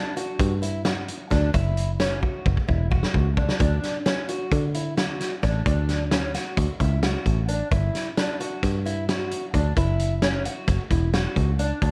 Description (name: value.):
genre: progressive instrumental, band music in an uneven meter.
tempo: 263 BPM (eighths).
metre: 9/8.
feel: straight.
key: unclear.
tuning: A4 = 439 Hz.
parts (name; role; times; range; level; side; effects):
fingerpicked twelve-string acoustic guitar; arpeggios; 0.0-11.9 s; C#4 to F#4; -32 LUFS; equal; none.
loose indie drum kit; drums; 0.2-11.9 s; hi-hat, kick drum, snare drum; -28 LUFS; equal; none.
picked electric bass; bass; 0.4-11.9 s; E1 to D3; -26 LUFS; equal; none.
room: light reverb.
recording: dark, warm production.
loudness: -24 LUFS.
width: mono.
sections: 0.0-11.8 A section.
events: drum fill 2.2-3.6.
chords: 0.0 G5; 1.5 F#5; 3.6 Dmaj7; 7.7 G5; 9.8 F#5.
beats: 0.16 0.39 0.62 0.85 1.08 1.31 | 1.54 1.77 2.00 2.23 2.46 2.69 2.91 3.14 3.37 | 3.60 3.83 4.06 4.29 4.52 4.74 4.97 5.20 5.43 | 5.66 5.89 6.12 6.34 6.57 6.80 7.03 7.26 7.49 | 7.71 7.94 8.17 8.40 8.63 8.86 9.08 9.31 9.54 | 9.77 9.99 10.22 10.45 10.68 10.91 11.13 11.36 11.59 | 11.82.